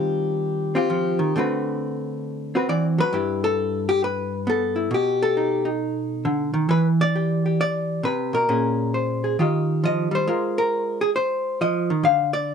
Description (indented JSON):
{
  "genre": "solo jazz",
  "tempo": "134 BPM",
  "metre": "4/4",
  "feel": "swing 66% on 8ths",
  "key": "unclear",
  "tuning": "A4 = 439 Hz",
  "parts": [
    { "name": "hollow-body jazz guitar", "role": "solo", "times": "0.0-12.5 s", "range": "G2 to F5", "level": "-20 LUFS", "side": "equal", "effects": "none" }
  ],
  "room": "light reverb",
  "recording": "minimal, uncompressed stereo recording",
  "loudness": "-20 LUFS",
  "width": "side -7 dB against mid",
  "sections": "0.0-3.1 A section; 3.1-12.5 B section",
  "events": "none",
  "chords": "0.0 Eb69; 1.3 D13; 3.1 G69; 4.9 B7alt; 6.7 Em7; 8.5 Bbm9; 9.4 Ebadd9; 10.3 Ab69; 12.0 Dm",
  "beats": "0.44 0.89 | 1.33 1.78 2.23 2.67 | 3.12 3.57 4.01 4.46 | 4.91 5.35 5.80 6.24 | 6.69 7.14 7.58 8.03 | 8.47 8.92 9.37 9.81 | 10.26 10.70 11.15 11.60 | 12.04 12.49"
}